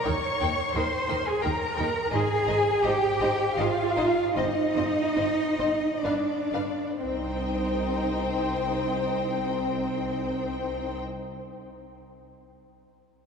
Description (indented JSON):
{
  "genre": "classical, slow romantic movement for string orchestra",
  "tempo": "59-88 BPM",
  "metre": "3/4",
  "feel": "rubato",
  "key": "C minor",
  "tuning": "A4 = 440 Hz",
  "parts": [
    { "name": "warm studio violin section", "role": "melody", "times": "0.0-11.0 s", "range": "Eb5 to G5", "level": "-36 LUFS", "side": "left 7 dB", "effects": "none" },
    { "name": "warm studio violin section", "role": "second line", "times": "0.0-11.0 s", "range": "C5 to Db6", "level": "-31 LUFS", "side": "left 4 dB", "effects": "none" },
    { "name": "warm studio viola section", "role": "accompaniment", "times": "0.0-11.0 s", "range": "C4 to C5", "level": "-33 LUFS", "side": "equal", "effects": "none" },
    { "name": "rich studio cello section", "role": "bass", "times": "0.0-11.0 s", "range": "C4 to Db5", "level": "-28 LUFS", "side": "right 2 dB", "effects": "none" },
    { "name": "warm studio double bass section", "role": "bass", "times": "0.1-11.0 s", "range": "G1 to Eb2", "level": "-33 LUFS", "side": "right 3 dB", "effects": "none" }
  ],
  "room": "wet cathedral reverb, RT60 4.6 s",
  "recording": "recorded in a church or concert hall",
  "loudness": "-24 LUFS",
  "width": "side -6 dB against mid",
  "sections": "0.0-7.0 A section; 7.0-12.6 B section",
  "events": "slowing down 1.1-7.0",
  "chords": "0.0 Eb7; 2.1 Ab; 4.3 Cm/G; 6.0 G; 7.0 Cm",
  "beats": "| 0.04 0.74 1.43 | 2.12 2.83 3.57 | 4.35 5.15 6.04 | 7.02 7.95 8.87 | 9.79 10.73"
}